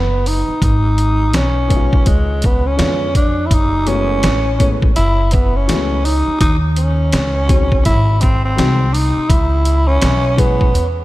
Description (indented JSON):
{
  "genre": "hip hop, jazz-hop",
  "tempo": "83 BPM",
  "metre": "4/4",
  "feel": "swing 62% on 16ths",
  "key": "C# minor",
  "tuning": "A4 = 441 Hz",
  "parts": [
    { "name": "growling tenor saxophone", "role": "melody", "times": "0.0-10.9 s", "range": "G#3 to E4", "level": "-18 LUFS", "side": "equal", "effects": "tape echo" },
    { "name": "upright bass", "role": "bass", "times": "0.0-11.0 s", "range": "F#1 to E#2", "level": "-16 LUFS", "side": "equal", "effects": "none" },
    { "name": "trip hop sampler-style drum kit", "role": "drums", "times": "0.3-11.0 s", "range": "hi-hat, kick drum, snare drum", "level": "-16 LUFS", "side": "equal", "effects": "none" },
    { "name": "warm upright piano", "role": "accompaniment", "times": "1.7-10.7 s", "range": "D3 to G#4", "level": "-24 LUFS", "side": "left 5 dB", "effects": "none" }
  ],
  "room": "light reverb, studio reverb",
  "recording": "none",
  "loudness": "-12 LUFS",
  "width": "side -17 dB against mid",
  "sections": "0.0-11.0 A section",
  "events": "none",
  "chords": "0.0 Emaj7(no3) (rootless); 0.6 G#m; 2.1 C#7b9; 3.5 F#m11; 6.4 C#sus24; 7.8 G#7; 9.3 C#m7"
}